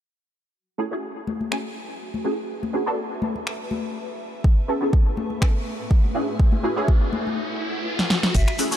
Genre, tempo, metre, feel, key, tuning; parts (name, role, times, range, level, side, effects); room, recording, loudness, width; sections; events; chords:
deep house; 123 BPM; 4/4; swing 54% on 16ths; F# minor; A4 = 442 Hz
granular cloud pad; texture; 1.9-8.8 s; A3 to G#5; -35 LUFS; right 1 dB; built-in reverb, lush chorus, sidechain pumping
filtered dub chord stab; stabs; 0.8-8.8 s; A3 to A4; -27 LUFS; right 1 dB; phaser, ensemble chorus, sidechain pumping, ping-pong delay
congas; percussion; 1.3-7.4 s; -31 LUFS; left 4 dB
deep house drum kit; drums; 1.5-8.8 s; crash cymbal, finger snaps, hi-hat, snare drum; -26 LUFS; equal; overdrive
electronic kick drum; drums; 4.4-8.5 s; -18 LUFS; equal; overdrive
riser; sound effects; 6.1-8.3 s; -32 LUFS; left 1 dB
silver concert flute; melody; 8.3-8.7 s; E5; -32 LUFS; equal; vintage 12-bit sampler grit, ping-pong delay
round analog bass; bass; 8.3-8.4 s; F#1; -22 LUFS; equal; sidechain pumping
shaker and hi-hat; drums; 8.3-8.8 s; -34 LUFS; right 2 dB
egg shaker; percussion; 8.4-8.8 s; -30 LUFS; left 5 dB
light reverb, small room ambience; -21 LUFS; side -10 dB against mid
0.5-8.3 A section
fade-in on ambient pad 0.5-8.3; filter sweep on synth stab 0.5-8.3; riser 6.1-8.3; break 7.4-8.3; drum fill 8.0-8.3
0.5 F#m9; 2.5 Bm9; 4.2 Amaj9; 6.2 Dmaj9#11